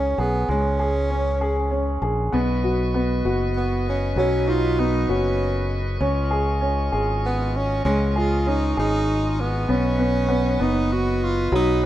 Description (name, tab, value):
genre	six-eight pop ballad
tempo	65 BPM (dotted quarters)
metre	6/8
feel	straight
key	unclear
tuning	A4 = 440 Hz
part	warm tenor saxophone	melody	0.0-11.9 s	B3 to F#4	-25 LUFS	right 1 dB	none
part	clear upright piano	accompaniment	0.0-11.9 s	F#3 to G#4	-23 LUFS	equal	none
part	modern bright fingered electric bass	bass	0.0-11.9 s	F#1 to C#2	-24 LUFS	equal	none
part	bright tonewheel organ	sustained chords	2.3-11.9 s	E#4 to C#6	-32 LUFS	left 1 dB	wide subtle chorus
room	light reverb, studio reverb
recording	rough home demo mix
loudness	-19 LUFS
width	side -13 dB against mid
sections	0.0-2.3 A section; 2.3-11.9 B section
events	none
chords	0.0 C#5; 2.3 Badd9; 6.0 C#add9; 9.7 Badd9